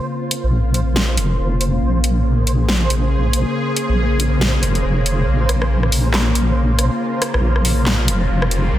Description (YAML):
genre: deep dubstep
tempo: 139 BPM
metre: 4/4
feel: swing 58% on 16ths, half-time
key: Bb minor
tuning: A4 = 439 Hz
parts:
  - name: bowed-like drone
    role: sustained chords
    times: 0.0-8.8 s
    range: Db3 to Ab4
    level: -22 LUFS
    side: left 2 dB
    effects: built-in reverb, phaser
  - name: flickering grainy texture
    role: texture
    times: 0.0-8.8 s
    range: C5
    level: -28 LUFS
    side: right 3 dB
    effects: built-in reverb
  - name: dubstep drum kit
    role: drums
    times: 0.3-8.6 s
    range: handclaps, hi-hat, rim click, snare drum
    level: -22 LUFS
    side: equal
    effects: small room reverb
  - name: wobble bass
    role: bass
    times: 0.4-8.8 s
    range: F1 to Bb1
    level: -17 LUFS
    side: equal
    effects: chorus
  - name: riser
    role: sound effects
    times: 7.5-8.8 s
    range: none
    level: -32 LUFS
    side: equal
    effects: none
room: light reverb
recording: dense, heavily limited modern master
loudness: -15 LUFS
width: side -13 dB against mid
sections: 0.0-8.8 A section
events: build-up 0.0-8.8; filter sweep on synth drone 0.0-8.8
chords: 0.0 Bbm